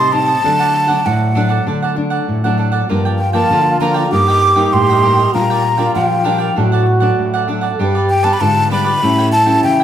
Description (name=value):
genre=samba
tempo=98 BPM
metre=4/4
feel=straight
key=G minor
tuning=A4 = 440 Hz
part: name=breathy mellow silver concert flute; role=melody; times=0.0-9.8 s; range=F#5 to D6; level=-14 LUFS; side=equal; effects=none
part: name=cavaquinho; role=accompaniment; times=0.0-9.8 s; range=D4 to A5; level=-21 LUFS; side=right 6 dB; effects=none
part: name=nylon-string guitar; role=accompaniment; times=0.0-9.8 s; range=G2 to F4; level=-20 LUFS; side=left 5 dB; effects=none
part: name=nylon-string guitar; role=bass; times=0.0-9.8 s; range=G2 to D3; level=-18 LUFS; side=equal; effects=none
part: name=breathy trombone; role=second line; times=2.9-9.8 s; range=Eb4 to A4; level=-19 LUFS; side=right 3 dB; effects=none
room=moderate large studio reverb, RT60 0.8 s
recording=band playing live in one room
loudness=-12 LUFS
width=side -10 dB against mid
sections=0.0-9.8 A section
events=none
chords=0.4 D; 2.9 Gm7; 4.1 Eb/G; 5.4 Bb6; 6.6 D/A; 7.8 G; 9.0 A7